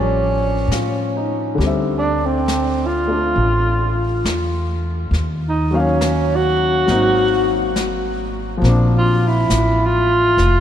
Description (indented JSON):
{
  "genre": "jazz",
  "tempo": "68 BPM",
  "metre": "4/4",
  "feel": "swing 68% on 8ths",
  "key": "D minor",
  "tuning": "A4 = 440 Hz",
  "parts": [
    { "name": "breathy tenor saxophone", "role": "melody", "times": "0.0-10.6 s", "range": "C4 to Gb4", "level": "-18 LUFS", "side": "right 1 dB", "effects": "none" },
    { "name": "warm grand piano", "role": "accompaniment", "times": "0.0-10.6 s", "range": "D3 to F5", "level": "-23 LUFS", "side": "left 3 dB", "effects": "none" },
    { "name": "upright bass", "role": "bass", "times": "0.0-10.6 s", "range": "F1 to A2", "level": "-20 LUFS", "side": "equal", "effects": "none" },
    { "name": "jazz brush drum kit", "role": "drums", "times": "0.7-10.6 s", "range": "brushed snare drum, hi-hat, snare drum", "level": "-29 LUFS", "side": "left 1 dB", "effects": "none" }
  ],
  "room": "wet cathedral reverb, RT60 5.7 s",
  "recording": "in a vast, echoing space",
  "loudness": "-15 LUFS",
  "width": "side -10 dB against mid",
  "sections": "0.0-1.6 A section; 1.6-10.6 B section",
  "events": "tenor saxophone solo 1.6-10.6",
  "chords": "0.0 A7alt; 1.6 Dm11; 5.1 Ebm7; 6.9 G#9; 8.6 Bbmaj9"
}